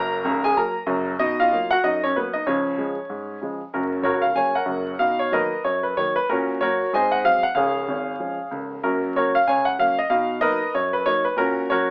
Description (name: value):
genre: jazz, stride piano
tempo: 189 BPM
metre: 4/4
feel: swing 61% on 8ths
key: F# major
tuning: A4 = 439 Hz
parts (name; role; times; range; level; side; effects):
- clear grand piano; solo; 0.0-11.9 s; C#1 to A#5; -22 LUFS; equal; none
room: moderate studio reverb, RT60 0.6 s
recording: heard from further back in the room, vinyl crackle, AM radio sound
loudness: -22 LUFS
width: mono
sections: 0.0-3.7 A section; 3.7-11.9 B section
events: none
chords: 0.0 F#; 1.2 Bmaj7; 2.5 C#; 3.7 F#; 5.0 Bmaj7; 6.3 F#/A#; 6.9 G#7; 7.6 C#; 8.8 F#; 10.1 Bmaj7; 11.4 F#/A#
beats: 0.25 0.56 0.88 | 1.20 1.52 1.83 2.15 | 2.47 2.79 3.10 3.42 | 3.74 4.06 4.37 4.69 | 5.01 5.33 5.65 5.96 | 6.28 6.60 6.92 7.24 | 7.56 7.87 8.19 8.51 | 8.83 9.15 9.47 9.79 | 10.11 10.42 10.74 11.06 | 11.38 11.70